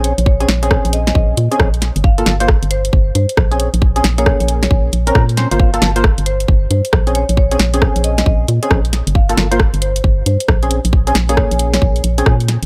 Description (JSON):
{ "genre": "UK garage, two-step garage", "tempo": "135 BPM", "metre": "4/4", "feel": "swing 64% on 16ths", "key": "unclear", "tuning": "A4 = 440 Hz", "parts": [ { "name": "marimba with medium mallets", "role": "melody", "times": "0.0-12.3 s", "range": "C5 to F5", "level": "-26 LUFS", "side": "equal", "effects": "digital delay" }, { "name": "percussive organ stab", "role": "stabs", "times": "0.0-12.4 s", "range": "Bb3 to C5", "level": "-22 LUFS", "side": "equal", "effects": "ensemble chorus, digital delay" }, { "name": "organ-like FM bass", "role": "bass", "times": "0.0-12.7 s", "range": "G1 to Bb2", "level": "-18 LUFS", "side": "equal", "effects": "none" }, { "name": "garage drum kit", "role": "drums", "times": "0.0-12.7 s", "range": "hi-hat, rim click, snare drum", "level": "-20 LUFS", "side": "equal", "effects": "none" }, { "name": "electronic kick drum", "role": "drums", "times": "0.3-12.4 s", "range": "none", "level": "-16 LUFS", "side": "equal", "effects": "none" } ], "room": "little or no reverb", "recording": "none", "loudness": "-14 LUFS", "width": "mono", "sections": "0.0-12.7 A section", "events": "none", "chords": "0.0 Bbm9; 2.0 Gm9; 3.6 Bbm9; 5.6 Gm9; 7.2 Bbm9; 9.2 Gm9; 10.7 Bbm9" }